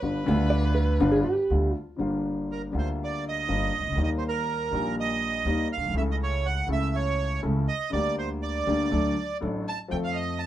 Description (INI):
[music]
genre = tango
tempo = 121 BPM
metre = 4/4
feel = rubato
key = G minor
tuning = A4 = 440 Hz
[part]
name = warm violin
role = second line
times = 0.0-1.5, 9.7-10.5 s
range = B4 to A5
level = -36 LUFS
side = right 1 dB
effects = none
[part]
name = warm concert grand piano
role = accompaniment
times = 0.0-10.5 s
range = G1 to A4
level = -29 LUFS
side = left 2 dB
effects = none
[part]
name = upright bass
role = bass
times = 0.0-10.5 s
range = G1 to F2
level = -28 LUFS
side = right 1 dB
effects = none
[part]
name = hollow-body jazz guitar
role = second line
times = 0.5-1.9 s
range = G4 to D5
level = -27 LUFS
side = right 2 dB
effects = none
[part]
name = bandoneon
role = melody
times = 2.5-10.5 s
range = Bb4 to A5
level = -29 LUFS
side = right 5 dB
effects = none
[sound]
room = moderate small room reverb, RT60 0.5 s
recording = band playing live in one room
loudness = -24 LUFS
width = side -12 dB against mid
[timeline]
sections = 0.0-2.0 A section; 2.0-10.5 B section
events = violin solo 0.0-2.0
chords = 0.0 G7; 2.0 Gm7; 4.0 Eb; 6.0 A/C#; 7.9 Gm/D; 8.9 D; 9.9 F